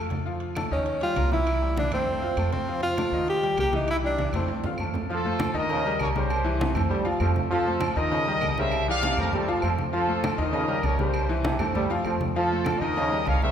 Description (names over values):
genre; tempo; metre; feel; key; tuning
latin, salsa; 198 BPM; 4/4; straight; F major; A4 = 441 Hz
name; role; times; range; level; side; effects
bright concert grand piano; accompaniment; 0.0-13.5 s; Eb3 to F6; -30 LUFS; left 3 dB; none
upright bass; bass; 0.0-13.5 s; C2 to F2; -29 LUFS; right 1 dB; none
congas; percussion; 0.1-13.5 s; none; -33 LUFS; left 1 dB; none
timbales and agogo bells; percussion; 0.1-13.4 s; none; -35 LUFS; right 5 dB; none
claves; percussion; 0.6-13.4 s; none; -42 LUFS; right 1 dB; none
clear tenor saxophone; melody; 0.7-4.6 s; C4 to G4; -26 LUFS; equal; none
warm trumpet section; melody; 5.1-13.5 s; F4 to F5; -29 LUFS; equal; none
bright trombone section; second line; 5.1-13.5 s; C3 to G3; -30 LUFS; right 3 dB; none
room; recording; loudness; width
wet scoring stage reverb, RT60 1.8 s; recorded in a church or concert hall; -23 LUFS; side -8 dB against mid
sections
0.0-5.1 A section; 5.1-13.5 B section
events
drum fill 4.2-5.1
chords
0.0 F; 0.9 Eb; 1.5 C; 2.1 F; 3.3 Eb; 3.9 C; 4.5 F; 5.7 Eb7; 6.3 C7; 6.9 F; 8.1 Eb7; 8.7 C7; 9.3 F; 10.5 Eb7; 11.1 C7; 11.8 F; 13.0 Eb7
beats
| 0.25 0.56 0.86 1.16 | 1.47 1.77 2.07 2.37 | 2.68 2.98 3.28 3.58 | 3.89 4.19 4.49 4.79 | 5.10 5.40 5.70 6.00 | 6.30 6.61 6.91 7.21 | 7.51 7.82 8.12 8.42 | 8.72 9.03 9.33 9.63 | 9.93 10.24 10.54 10.84 | 11.14 11.45 11.75 12.05 | 12.36 12.66 12.97 13.27